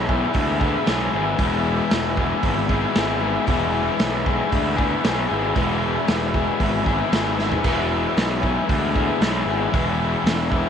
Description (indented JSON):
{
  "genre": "garage rock duo or trio",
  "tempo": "115 BPM",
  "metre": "4/4",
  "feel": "straight",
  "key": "E major",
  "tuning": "A4 = 440 Hz",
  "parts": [
    { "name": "overdriven combo organ", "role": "sustained chords", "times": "0.0-10.7 s", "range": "B4 to G#5", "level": "-26 LUFS", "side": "right 9 dB", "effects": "none" },
    { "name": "crunchy overdriven guitar", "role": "riff", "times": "0.0-10.7 s", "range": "E3 to G#4", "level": "-23 LUFS", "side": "left 11 dB", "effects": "none" },
    { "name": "fuzz picked electric bass", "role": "bass", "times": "0.0-10.6 s", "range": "E1 to D2", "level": "-25 LUFS", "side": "right 1 dB", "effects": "overdrive" },
    { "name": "raw garage drum kit", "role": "drums", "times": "0.1-10.6 s", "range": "crash cymbal, hi-hat, kick drum, snare drum, toms", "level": "-24 LUFS", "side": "right 1 dB", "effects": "none" }
  ],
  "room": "moderate spring reverb, RT60 1.6 s, studio reverb",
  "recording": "1960s-style stereo with parts hard left and right",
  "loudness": "-18 LUFS",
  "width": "side -8 dB against mid",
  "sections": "0.0-10.7 A section",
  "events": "drum fill 7.4",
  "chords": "0.0 E",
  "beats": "0.35 0.87 | 1.39 1.91 2.44 2.96 | 3.48 4.00 4.52 5.04 | 5.56 6.08 6.60 7.12 | 7.65 8.17 8.69 9.21 | 9.73 10.25"
}